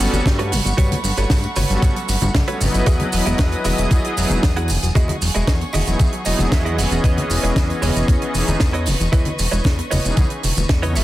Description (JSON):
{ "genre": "nu-disco, nu disco", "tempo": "115 BPM", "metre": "4/4", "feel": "straight", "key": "unclear", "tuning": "A4 = 440 Hz", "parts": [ { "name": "warm analog pad", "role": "accompaniment", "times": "0.0-11.0 s", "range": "E3 to D#5", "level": "-23 LUFS", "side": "equal", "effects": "chorus, tremolo, cassette tape, sidechain pumping, analog delay" }, { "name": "rich chamber violin section", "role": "sustained chords", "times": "0.0-11.0 s", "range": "A3 to D#6", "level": "-29 LUFS", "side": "equal", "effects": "sidechain pumping" }, { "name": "soft round pluck", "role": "arpeggios", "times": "0.0-11.0 s", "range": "C#3 to B3", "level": "-29 LUFS", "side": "right 1 dB", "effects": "chorus, sidechain pumping, tape echo" }, { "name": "fat analog bass", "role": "bass", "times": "0.0-11.0 s", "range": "E1 to G2", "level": "-21 LUFS", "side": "equal", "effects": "none" }, { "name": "tight funk drum kit", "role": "drums", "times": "0.0-11.0 s", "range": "hi-hat, shaker, snare drum", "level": "-25 LUFS", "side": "right 2 dB", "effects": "none" }, { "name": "tambourine and congas", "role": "percussion", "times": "0.0-11.0 s", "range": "none", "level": "-29 LUFS", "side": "left 2 dB", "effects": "none" }, { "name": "direct-recorded clean electric guitar", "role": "riff", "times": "0.3-11.0 s", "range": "E4 to F#5", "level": "-27 LUFS", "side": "right 3 dB", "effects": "wide subtle chorus, vintage 12-bit sampler grit, analog delay" }, { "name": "electronic kick drum", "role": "drums", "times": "0.3-10.8 s", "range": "none", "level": "-17 LUFS", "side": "equal", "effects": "overdrive" } ], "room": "light reverb, studio ambience", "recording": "dense, heavily limited modern master", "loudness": "-16 LUFS", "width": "side -15 dB against mid", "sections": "0.0-11.0 A section", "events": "clean electric guitar fill 6.0-7.0", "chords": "0.0 Gmaj9#11; 2.9 Emaj9; 7.0 C#m9/E", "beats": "0.26 | 0.78 1.30 1.83 2.35 | 2.87 3.39 3.91 4.43 | 4.96 5.48 6.00 6.52 | 7.04 7.57 8.09 8.61 | 9.13 9.65 10.17 10.70" }